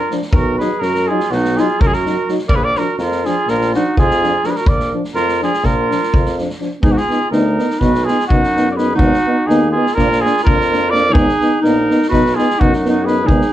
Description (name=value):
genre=balkan folk, Balkan brass band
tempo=250 BPM (eighths)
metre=9/8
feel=straight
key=Bb phrygian dominant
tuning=A4 = 436 Hz
part: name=mellow trumpet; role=melody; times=0.0-13.5 s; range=F#4 to D5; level=-18 LUFS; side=right 1 dB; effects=none
part: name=warm clarinet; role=second line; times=0.0-13.5 s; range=D#4 to Bb4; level=-20 LUFS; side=right 2 dB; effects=none
part: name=warm euphonium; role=accompaniment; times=0.1-13.4 s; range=F3 to Cb4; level=-22 LUFS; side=right 3 dB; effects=none
part: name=warm trombone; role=accompaniment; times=0.1-13.4 s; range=D4 to D#4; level=-22 LUFS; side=left 4 dB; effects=none
part: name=street-band drum kit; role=percussion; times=0.1-13.5 s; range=kick drum, snare drum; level=-18 LUFS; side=equal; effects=none
part: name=warm tuba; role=bass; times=0.3-13.4 s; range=Ab1 to Ab2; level=-21 LUFS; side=left 1 dB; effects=none
room=wet small room reverb, RT60 0.5 s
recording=heard from further back in the room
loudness=-13 LUFS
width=side -12 dB against mid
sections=0.0-6.8 A section; 6.8-13.5 B section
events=none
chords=0.3 B; 2.5 Bb; 6.8 Abm; 7.8 B; 9.0 Abm; 9.9 Bb; 11.1 Abm; 12.1 B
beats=0.09 | 0.33 0.57 0.81 1.05 1.29 1.53 1.78 2.02 2.26 | 2.50 2.74 2.98 3.22 3.46 3.70 3.94 4.18 4.42 | 4.66 4.90 5.14 5.38 5.62 5.87 6.11 6.35 6.59 | 6.83 7.07 7.31 7.55 7.79 8.03 8.27 8.51 8.75 | 8.99 9.23 9.46 9.71 9.94 10.18 10.42 10.66 10.90 | 11.14 11.38 11.62 11.86 12.10 12.33 12.57 12.81 13.05 | 13.29 13.53